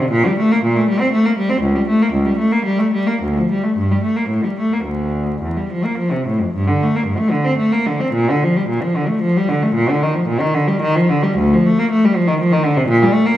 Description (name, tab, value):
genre	classical, baroque-style suite movement for unaccompanied cello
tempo	101-123 BPM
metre	3/4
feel	rubato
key	D minor, G minor from 6.6 s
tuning	A4 = 440 Hz
part	clear cello	solo	0.0-13.4 s	C#2 to C4	-14 LUFS	equal	none
room	moderate concert hall reverb, RT60 1.7 s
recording	minimal, uncompressed stereo recording, vinyl crackle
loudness	-14 LUFS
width	side -13 dB against mid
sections	0.0-6.6 A section; 6.6-13.4 A section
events	none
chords	none